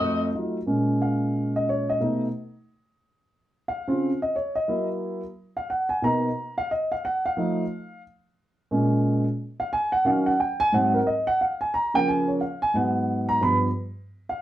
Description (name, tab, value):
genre	jazz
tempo	179 BPM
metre	4/4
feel	swing 62% on 8ths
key	Bb minor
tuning	A4 = 445 Hz
part	dark grand piano	accompaniment	0.0-14.4 s	F2 to B5	-22 LUFS	right 1 dB	none
room	wet small room reverb, RT60 0.6 s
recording	band playing live in one room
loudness	-22 LUFS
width	side -13 dB against mid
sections	0.7-11.4 A section; 11.4-14.4 A section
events	grand piano solo 0.7-14.4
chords	0.0 F7b9; 0.7 Bbm7; 2.0 B7; 3.4 Dbmaj7; 4.7 Gb7; 6.0 Bmaj7; 7.4 F7; 8.7 Bbm7; 10.1 Ebm7; 10.7 Ab7; 11.4 Db6; 12.7 Abm7; 13.4 G7